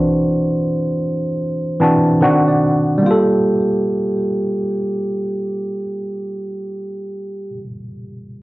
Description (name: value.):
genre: hip hop.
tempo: 73 BPM.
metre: 4/4.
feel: swing 66% on 16ths.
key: G dorian.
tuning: A4 = 441 Hz.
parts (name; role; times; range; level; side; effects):
vibraphone with soft mallets; melody; 0.0-7.6 s; G4 to C5; -23 LUFS; right 1 dB; low-pass filter, plate reverb.
tine electric piano; accompaniment; 0.0-8.4 s; Eb3 to A5; -17 LUFS; equal; cassette tape, low-pass filter.
room: moderate studio reverb, RT60 0.6 s.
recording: worn, warbling old tape, cassette tape, warbly pitch drift.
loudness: -15 LUFS.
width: side -19 dB against mid.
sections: 0.0-3.0 A section; 3.0-6.3 B section.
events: none.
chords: 0.0 D9; 2.2 D7b9; 3.0 Gm9.